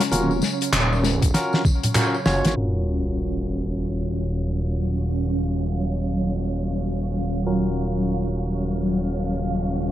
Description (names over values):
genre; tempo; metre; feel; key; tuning
glitch hop; 98 BPM; 4/4; swing 62% on 16ths; Eb minor; A4 = 441 Hz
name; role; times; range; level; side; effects
warm analog pad; sustained chords; 0.0-9.9 s; Db3 to F5; -34 LUFS; right 2 dB; none
damped 70s drum kit; drums; 0.0-2.5 s; handclaps, hi-hat, snare drum, tambourine, toms; -22 LUFS; left 1 dB; low-pass filter on hats, low-pass filter on snare, low-pass filter on toms, low-pass filter on perc, low-pass filter on room
ethereal airy pad; texture; 0.0-9.9 s; Gb3 to F5; -28 LUFS; right 1 dB; ensemble chorus, built-in reverb, phaser, sidechain pumping
barky tine electric piano; stabs; 0.1-9.9 s; Db4 to Db5; -29 LUFS; equal; overdrive, sidechain pumping, ping-pong delay
vowel-sweep wobble bass; bass; 0.1-2.5 s; Eb1 to Ab1; -23 LUFS; equal; chorus
gritty driven synth bass; bass; 0.7-9.9 s; Eb1 to Gb1; -24 LUFS; equal; overdrive
electronic kick drum; drums; 1.2-1.8 s; none; -19 LUFS; equal; overdrive
sub drop; sound effects; 2.6-5.0 s; none; -29 LUFS; equal; none
room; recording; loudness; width
moderate studio reverb, RT60 0.6 s; vinyl crackle, low-pass filter; -21 LUFS; side -12 dB against mid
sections
0.0-2.6 A section; 2.6-9.9 B section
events
drum fill 1.3-2.6; impact 2.6-5.0; filter sweep 2.6-9.9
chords
0.0 Ebm9